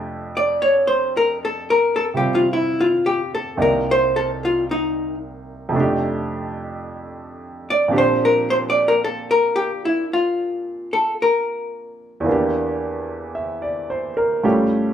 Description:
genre	jazz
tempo	55 BPM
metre	4/4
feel	swing 69% on 8ths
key	F major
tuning	A4 = 440 Hz
part	clear baby grand piano	accompaniment	0.0-14.9 s	C2 to E5	-23 LUFS	right 2 dB	none
part	archtop guitar, miked and amplified	melody	0.4-13.3 s	Eb4 to D5	-18 LUFS	left 1 dB	none
room	moderate large studio reverb, RT60 0.9 s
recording	band playing live in one room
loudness	-18 LUFS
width	side -9 dB against mid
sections	0.0-14.9 A section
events	hollow-body jazz guitar solo 0.0-14.9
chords	0.0 F69; 3.6 Cm7; 5.7 F13; 7.9 Bb69; 12.3 Em7b5

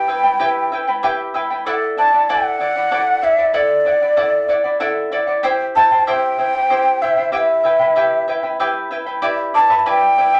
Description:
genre	andean folk, Andean ensemble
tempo	63 BPM (dotted quarters)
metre	6/8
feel	straight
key	E minor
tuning	A4 = 440 Hz
part	breathy mellow large quena	melody	0.0-10.4 s	D5 to A5	-17 LUFS	equal	none
part	charango	accompaniment	0.0-10.4 s	E4 to G5	-22 LUFS	equal	none
room	wet studio reverb, RT60 0.6 s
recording	none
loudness	-17 LUFS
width	mono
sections	0.0-9.2 A section; 9.2-10.4 A section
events	none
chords	0.0 Em; 1.7 D/E; 5.4 C/E; 7.3 Em; 9.2 G/E

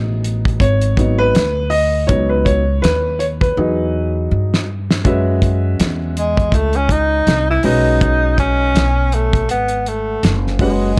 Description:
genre	hip hop, jazz-hop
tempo	81 BPM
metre	4/4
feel	swing 59% on 16ths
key	F# dorian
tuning	A4 = 440 Hz
part	warm upright piano	accompaniment	0.0-11.0 s	F#3 to F#5	-20 LUFS	equal	none
part	upright bass	bass	0.0-11.0 s	F#1 to G2	-20 LUFS	equal	none
part	cloth-damped thuddy drum kit	drums	0.2-11.0 s	hi-hat, kick drum, snare drum	-20 LUFS	equal	none
part	breathy tenor saxophone	melody	6.2-11.0 s	G#3 to E4	-20 LUFS	equal	none
room	light reverb, small room ambience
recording	dark, warm production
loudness	-16 LUFS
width	mono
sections	0.0-5.0 A section; 5.0-11.0 A section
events	upright piano solo 0.0-5.0; drum fill 3.6-5.0; tenor saxophone solo 5.0-11.0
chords	0.0 G#m7; 2.1 C#9sus4; 3.6 Emaj7; 5.0 F#9sus4; 7.6 B

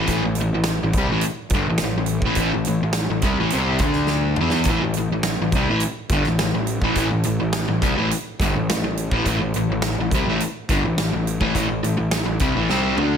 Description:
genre	classic rock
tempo	105 BPM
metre	4/4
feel	straight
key	unclear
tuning	A4 = 440 Hz
part	crunchy overdriven guitar	riff	0.0-13.2 s	G2 to E4	-21 LUFS	left 1 dB	none
part	fuzz picked electric bass	bass	0.0-13.2 s	G1 to E2	-25 LUFS	equal	overdrive
part	big rock drum kit	drums	0.1-13.1 s	hi-hat, kick drum, snare drum, toms	-25 LUFS	equal	none
room	light reverb, small room ambience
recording	none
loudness	-18 LUFS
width	side -7 dB against mid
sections	0.0-13.2 A section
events	drum fill 4.1-4.7, 12.7-13.2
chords	0.0 A5; 3.8 D5; 4.4 A5

